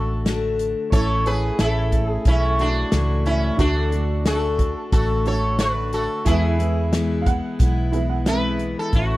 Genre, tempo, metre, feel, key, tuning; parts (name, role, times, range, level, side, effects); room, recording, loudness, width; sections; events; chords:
honky-tonk and classic country; 90 BPM; 4/4; straight; A4 = 441 Hz
sitar; melody; 0.0-9.2 s; C#4 to C#5; -24 LUFS; right 1 dB
honky-tonk upright piano; accompaniment; 0.0-8.9 s; A3 to C#5; -33 LUFS; right 6 dB
picked steel-string acoustic guitar; accompaniment; 0.0-9.2 s; E2 to F#4; -26 LUFS; left 4 dB
vintage muted fingered electric bass; bass; 0.0-9.2 s; A1 to E2; -22 LUFS; equal
natural country drum kit; drums; 0.3-9.1 s; hi-hat, kick drum, snare drum; -20 LUFS; equal
dark upright piano; second line; 7.2-8.6 s; C4 to F#5; -28 LUFS; right 4 dB
little or no reverb; dry, close 1970s-style studio recording; -18 LUFS; side -17 dB against mid
0.0-8.9 A section
0.0 D; 0.9 A; 3.6 D; 6.3 E